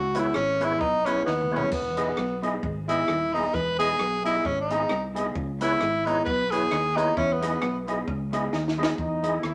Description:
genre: ska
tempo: 132 BPM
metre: 4/4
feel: swing 56% on 8ths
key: E major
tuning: A4 = 440 Hz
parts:
  - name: breathy tenor saxophone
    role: melody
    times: 0.0-7.8 s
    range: B3 to B4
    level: -27 LUFS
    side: equal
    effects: none
  - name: clean electric guitar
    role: riff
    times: 0.0-8.7 s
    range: D#3 to E4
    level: -39 LUFS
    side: equal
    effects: harmonic tremolo, dub echo
  - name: fingered electric bass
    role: bass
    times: 0.0-9.5 s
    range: D#1 to E2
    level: -35 LUFS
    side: equal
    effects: none
  - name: mellow electric guitar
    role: accompaniment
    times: 0.1-9.4 s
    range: B3 to G#4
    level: -36 LUFS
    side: equal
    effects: none
  - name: tonewheel organ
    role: stabs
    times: 0.1-9.4 s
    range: E4 to D#5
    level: -34 LUFS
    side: equal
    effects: overdrive, fast rotary speaker
  - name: compact cocktail drum kit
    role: drums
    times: 0.1-9.5 s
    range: crash cymbal, hi-hat, kick drum, rim click, snare drum, toms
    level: -35 LUFS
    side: equal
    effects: none
  - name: warm horn section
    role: melody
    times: 9.0-9.5 s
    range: D#4 to E4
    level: -31 LUFS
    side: equal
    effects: none
room: wet studio reverb, RT60 0.8 s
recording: faint mains hum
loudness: -26 LUFS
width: mono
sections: 0.0-9.0 A section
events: tenor saxophone solo 0.0-9.0; drum fill 1.3-1.7, 8.5-9.0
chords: 0.0 C#m7; 1.7 Emaj7; 5.4 C#m7; 7.2 Emaj7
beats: 0.36 0.81 1.27 | 1.72 2.18 2.63 3.08 | 3.54 3.99 4.45 4.90 | 5.35 5.81 6.26 6.71 | 7.17 7.62 8.08 8.53 | 8.98 9.44

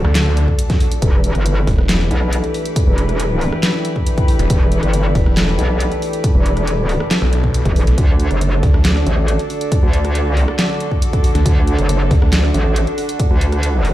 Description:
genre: heavy wobble dubstep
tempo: 138 BPM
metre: 4/4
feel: half-time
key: E minor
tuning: A4 = 437 Hz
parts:
  - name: rich chamber string section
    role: sustained chords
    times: 0.0-13.9 s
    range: D3 to B4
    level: -25 LUFS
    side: left 2 dB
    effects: sidechain pumping, low-pass filter
  - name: metallic wobble bass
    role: bass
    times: 0.0-13.9 s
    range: E1 to D2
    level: -16 LUFS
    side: equal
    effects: chorus, overdrive
  - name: snarling distorted saw bass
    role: bass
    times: 0.0-12.5 s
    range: E1 to D2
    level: -16 LUFS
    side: equal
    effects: distortion, overdrive
  - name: dubstep drum kit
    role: drums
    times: 0.0-13.9 s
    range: handclaps, hi-hat, rim click, snare drum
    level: -22 LUFS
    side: equal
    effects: overdrive
  - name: deep dark ambient pad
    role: texture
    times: 0.0-13.9 s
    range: A4 to G5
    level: -24 LUFS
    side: equal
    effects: chorus, built-in reverb, sidechain pumping
  - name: electronic kick drum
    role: drums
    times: 0.5-13.3 s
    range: none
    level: -15 LUFS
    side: equal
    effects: none
room: little or no reverb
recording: played on a big sound system in a bare room, large studio reverb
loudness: -13 LUFS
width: side -14 dB against mid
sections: 0.0-13.9 A section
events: none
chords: 0.0 D; 1.0 Em; 8.0 D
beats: 0.15 0.59 | 1.02 1.46 1.89 2.33 | 2.76 3.20 3.63 4.07 | 4.50 4.93 5.37 5.80 | 6.24 6.67 7.11 7.54 | 7.98 8.41 8.85 9.28 | 9.72 10.15 10.59 11.02 | 11.46 11.89 12.33 12.76 | 13.20 13.63

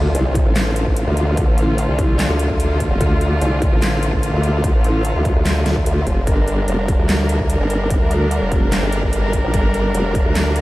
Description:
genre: heavy wobble dubstep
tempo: 147 BPM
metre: 4/4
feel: half-time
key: D minor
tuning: A4 = 440 Hz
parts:
  - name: clear studio string section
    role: sustained chords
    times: 0.0-10.6 s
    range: D3 to Bb4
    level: -22 LUFS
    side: equal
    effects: sidechain pumping
  - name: formant-sweep wobble bass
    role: bass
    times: 0.0-10.6 s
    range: F1 to D2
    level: -18 LUFS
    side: equal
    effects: chorus, overdrive
  - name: impact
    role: sound effects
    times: 0.0-1.4 s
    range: none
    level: -30 LUFS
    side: equal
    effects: none
  - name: formant-sweep wobble bass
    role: bass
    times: 0.1-10.2 s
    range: F1 to D2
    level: -18 LUFS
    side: equal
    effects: chorus, overdrive
  - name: dubstep drum kit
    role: drums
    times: 0.1-10.6 s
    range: handclaps, hi-hat, snare drum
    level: -26 LUFS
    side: equal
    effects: studio reverb
  - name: electronic kick drum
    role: drums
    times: 0.4-10.2 s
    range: none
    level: -19 LUFS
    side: equal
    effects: distortion, studio reverb
room: light reverb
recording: none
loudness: -15 LUFS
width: side -17 dB against mid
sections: 0.0-10.6 A section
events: impact 0.0-1.4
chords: 0.0 Dm; 6.3 Gm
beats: 0.15 0.56 0.96 | 1.37 1.78 2.19 2.60 | 3.01 3.41 3.82 4.23 | 4.64 5.05 5.46 5.86 | 6.27 6.68 7.09 7.50 | 7.90 8.31 8.72 9.13 | 9.54 9.95 10.35

